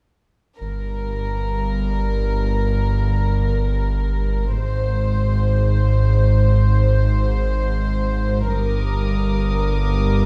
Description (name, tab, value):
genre	cinematic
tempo	free time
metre	none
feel	none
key	G phrygian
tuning	A4 = 440 Hz
part	warm symphonic violin section	melody	0.6-10.3 s	Bb4 to C5	-29 LUFS	equal	none
part	rich symphonic cello section	bass	0.6-10.3 s	G2 to Ab2	-26 LUFS	equal	none
part	warm chamber double bass section	bass	0.6-10.3 s	G1 to Ab1	-25 LUFS	equal	none
part	saturated sub bass	drone	0.6-10.3 s	G1 to Ab1	-24 LUFS	equal	none
part	warm studio violin section	texture	8.5-10.3 s	D6 to Eb6	-34 LUFS	equal	none
room	light reverb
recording	dark, warm production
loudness	-20 LUFS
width	mono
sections	0.6-10.3 A section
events	none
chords	0.6 Gm; 4.6 Ab; 8.5 Gm